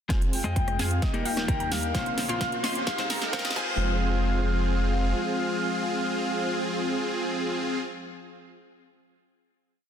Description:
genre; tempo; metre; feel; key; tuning
EDM, festival progressive house; 130 BPM; 4/4; straight; F minor; A4 = 444 Hz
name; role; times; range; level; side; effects
direct-recorded clean electric guitar; accompaniment; 0.1-7.8 s; Bb2 to F5; -34 LUFS; left 4 dB; spring reverb, sidechain pumping, ping-pong delay
lush unison pad; sustained chords; 0.1-7.8 s; C3 to C5; -36 LUFS; left 1 dB; chorus, sidechain pumping
wide unison pluck; arpeggios; 0.1-7.8 s; Ab4 to Eb6; -38 LUFS; equal; sidechain pumping, ping-pong delay
supersaw chords; riff; 0.1-7.8 s; Bb3 to Eb5; -31 LUFS; equal; cassette tape, sidechain pumping, low-pass filter, ping-pong delay
saturated sub bass; bass; 0.1-5.1 s; Eb1 to F2; -29 LUFS; equal; sidechain pumping
big-room dance drum kit; drums; 0.1-3.6 s; hi-hat, rim click, snare drum; -33 LUFS; right 1 dB; none
electronic kick drum; drums; 0.1-3.7 s; none; -28 LUFS; equal; none
riser; sound effects; 1.6-3.8 s; none; -37 LUFS; right 1 dB; none
breathy flute-like synth lead; melody; 0.3-7.8 s; Eb5 to G5; -32 LUFS; left 1 dB; lush chorus, ping-pong delay
room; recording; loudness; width
light reverb; dense, heavily limited modern master, high-pass filter; -24 LUFS; side -8 dB against mid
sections
0.1-3.8 build; 3.8-7.5 final hit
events
build-up 0.1-3.8; drum fill 0.1-3.8; filter sweep on supersaw synth 0.1-3.8; filter sweep 0.1-3.8; riser 1.6-3.8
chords
0.1 Fm; 1.0 Eb; 1.9 Bbmadd9; 2.9 Cm; 3.6 Fm

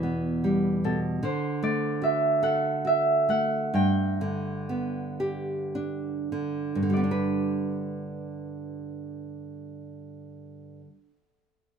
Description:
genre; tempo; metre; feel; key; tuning
children's music, lullaby; 48-76 BPM; 3/4; rubato; G major; A4 = 441 Hz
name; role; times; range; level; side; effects
Celtic harp; melody; 0.0-11.0 s; A4 to G5; -26 LUFS; right 2 dB; none
nylon-string guitar; accompaniment; 0.0-11.2 s; E2 to B4; -28 LUFS; right 1 dB; none
room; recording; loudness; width
wet studio reverb, RT60 0.6 s; minimal, uncompressed stereo recording; -24 LUFS; side -7 dB against mid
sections
0.0-6.9 A section; 6.9-10.6 B section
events
slowing down 1.2-6.9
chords
0.0 Em; 1.2 D; 3.7 G

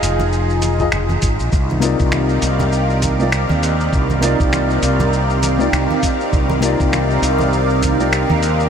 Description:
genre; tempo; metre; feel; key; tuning
sunset chillout; 100 BPM; 4/4; swing 58% on 16ths; C minor; A4 = 440 Hz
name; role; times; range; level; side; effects
warm grand piano; accompaniment; 0.0-8.1 s; C3 to Eb5; -21 LUFS; moving between left 5 dB and right 3 dB; auto-pan, analog delay
lush unison pad; sustained chords; 0.0-8.7 s; C4 to F5; -20 LUFS; right 1 dB; chorus, phaser
mellow fretless electric bass; bass; 0.0-8.7 s; F1 to Eb2; -19 LUFS; equal; none
dusty soul sampler-style drum kit; drums; 0.0-8.7 s; finger snaps, hi-hat, shaker; -25 LUFS; equal; small room ambience
congas; percussion; 0.2-8.4 s; none; -28 LUFS; right 2 dB; none
electronic kick drum; drums; 0.8-8.0 s; none; -19 LUFS; equal; small room ambience
room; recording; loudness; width
moderate huge ambient reverb, RT60 8.0 s; dreamy mix soaked in reverb; -14 LUFS; side -7 dB against mid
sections
0.0-8.7 A section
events
none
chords
0.0 Fm7; 1.5 Cm11

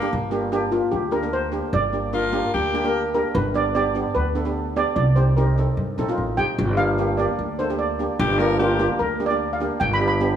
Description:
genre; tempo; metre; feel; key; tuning
calypso; 149 BPM; 4/4; straight; G minor; A4 = 444 Hz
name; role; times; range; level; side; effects
raspy alto saxophone; second line; 0.0-3.0, 8.2-8.9 s; Bb3 to Bb4; -26 LUFS; left 3 dB; none
steel pan; accompaniment; 0.0-10.3 s; Bb3 to Bb4; -25 LUFS; right 1 dB; none
upright bass; bass; 0.1-10.4 s; G1 to G2; -23 LUFS; equal; none
steel pan; melody; 0.7-10.4 s; F4 to B5; -24 LUFS; right 1 dB; tape echo
room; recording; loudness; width
moderate scoring stage reverb, RT60 1.7 s; small room ambience; -19 LUFS; side -9 dB against mid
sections
0.1-10.4 A section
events
steel pan solo 0.1-10.4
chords
0.1 Gm; 3.4 G; 5.0 Cm; 6.6 Gm7; 9.8 G

